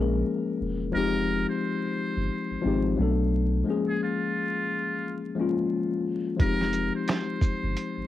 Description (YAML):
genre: lo-fi hip hop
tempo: 88 BPM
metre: 4/4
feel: swing 59% on 16ths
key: F minor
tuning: A4 = 442 Hz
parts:
  - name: mellow tine electric piano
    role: accompaniment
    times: 0.0-8.1 s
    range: F3 to Bb4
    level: -27 LUFS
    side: left 4 dB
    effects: medium stereo tremolo, cassette tape, low-pass filter
  - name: soft dub sub bass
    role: bass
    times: 0.0-8.0 s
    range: E1 to B1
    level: -28 LUFS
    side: equal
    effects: none
  - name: trumpet with metal mute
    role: melody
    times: 0.9-8.1 s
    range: F4 to C5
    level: -32 LUFS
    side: right 2 dB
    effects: low-pass filter, cassette tape
  - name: lo-fi sampler-style drum kit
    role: drums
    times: 6.4-7.9 s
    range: finger snaps, hi-hat, kick drum, shaker, snare drum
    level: -26 LUFS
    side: right 1 dB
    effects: cassette tape
room: moderate small room ambience, RT60 0.5 s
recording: home recording on cassette, vinyl crackle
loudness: -25 LUFS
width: side -13 dB against mid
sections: 0.0-8.1 A section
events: break 3.7-6.4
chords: 0.0 Bbm7; 0.9 Fm9; 3.0 Bm7; 3.7 Bbm7; 6.4 Fm9